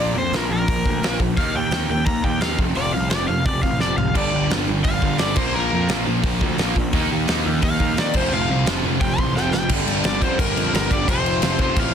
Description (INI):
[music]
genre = punk rock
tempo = 173 BPM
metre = 4/4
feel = straight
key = G minor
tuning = A4 = 442 Hz
[part]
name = crunchy overdriven guitar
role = melody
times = 0.0-11.9 s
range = Bb4 to C6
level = -24 LUFS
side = left 1 dB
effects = none
[part]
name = sludgy distorted guitar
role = riff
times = 0.0-11.9 s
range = F2 to Eb4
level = -25 LUFS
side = right 1 dB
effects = overdrive
[part]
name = fuzz picked electric bass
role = bass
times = 0.0-11.9 s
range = F1 to F2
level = -25 LUFS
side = equal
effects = overdrive
[part]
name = big rock drum kit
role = drums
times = 0.3-11.8 s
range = crash cymbal, hi-hat, kick drum, snare drum, toms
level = -22 LUFS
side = equal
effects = none
[part]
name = tight distorted guitar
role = riff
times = 4.1-11.9 s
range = F2 to Eb4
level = -26 LUFS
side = right 1 dB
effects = distortion
[sound]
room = light reverb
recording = dense, heavily limited modern master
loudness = -18 LUFS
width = side -8 dB against mid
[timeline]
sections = 0.0-9.7 A section; 9.7-11.9 B section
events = overdriven electric guitar solo 0.0-9.7; drum fill 3.8-4.2, 9.4-9.7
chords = 0.0 Bb5; 1.4 Eb; 2.6 F5; 4.2 G5; 5.4 Bb5; 6.9 Eb5; 8.1 F5; 9.7 Gm; 11.1 F